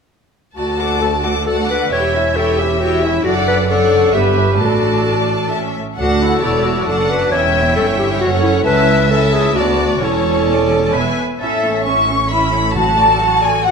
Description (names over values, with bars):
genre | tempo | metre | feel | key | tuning
quick classical-period movement for symphony orchestra | 134 BPM | 3/4 | straight | D major, A major from 8.7 s | A4 = 438 Hz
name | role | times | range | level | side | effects
rich chamber violin section | melody | 0.6-13.7 s | A4 to A5 | -24 LUFS | left 5 dB | none
rich chamber violin section | second line | 0.6-13.7 s | C#5 to D6 | -21 LUFS | left 2 dB | none
warm clarinet | second line | 0.6-10.9 s | E4 to C#5 | -17 LUFS | left 2 dB | none
rich chamber viola section | accompaniment | 0.6-13.7 s | F#3 to B4 | -20 LUFS | right 1 dB | none
dark symphonic cello section | bass | 0.6-13.7 s | C#2 to A4 | -23 LUFS | right 4 dB | none
rich chamber double bass section | bass | 0.6-13.7 s | E1 to D2 | -22 LUFS | right 4 dB | none
bright flute section | second line | 11.4-13.7 s | E5 to C#6 | -15 LUFS | left 1 dB | none
timpani | percussion | 12.8-13.4 s | A2 | -25 LUFS | left 2 dB | none
room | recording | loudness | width
moderate concert hall reverb, RT60 1.7 s | minimal, uncompressed stereo recording | -13 LUFS | side -5 dB against mid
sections
0.6-11.4 A section; 11.4-13.7 B section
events
none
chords
0.6 D; 1.9 C#dim/E; 3.3 D/F#; 4.2 Em/G; 4.6 D/A; 5.5 A; 6.0 D; 7.3 C#dim/E; 8.7 A/C#; 9.6 Bm7/D; 10.0 A/E; 10.9 E; 11.4 A; 12.8 D/A